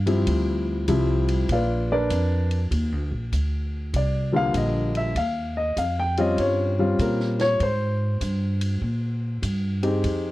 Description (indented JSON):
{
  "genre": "jazz piano trio",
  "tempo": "98 BPM",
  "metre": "4/4",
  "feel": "swing 66% on 8ths",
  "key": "Eb major",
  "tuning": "A4 = 439 Hz",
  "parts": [
    { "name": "upright bass", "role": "bass", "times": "0.0-10.3 s", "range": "Bb1 to Bb2", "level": "-24 LUFS", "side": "equal", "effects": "none" },
    { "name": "warm grand piano", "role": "melody", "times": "0.1-10.3 s", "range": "D3 to G5", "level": "-23 LUFS", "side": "left 1 dB", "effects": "none" },
    { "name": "compact cocktail drum kit", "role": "drums", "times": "0.1-10.2 s", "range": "hi-hat, kick drum, ride cymbal, snare drum", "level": "-36 LUFS", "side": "equal", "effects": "none" }
  ],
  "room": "light reverb",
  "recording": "worn, warbling old tape, cassette tape, warbly pitch drift",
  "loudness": "-21 LUFS",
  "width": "side -17 dB against mid",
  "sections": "0.0-2.7 A section; 2.7-10.3 B section",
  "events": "none",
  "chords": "0.3 Dm11; 1.5 Bb; 2.7 Ebmaj9 (rootless); 5.2 Eb13; 7.6 Abmaj9"
}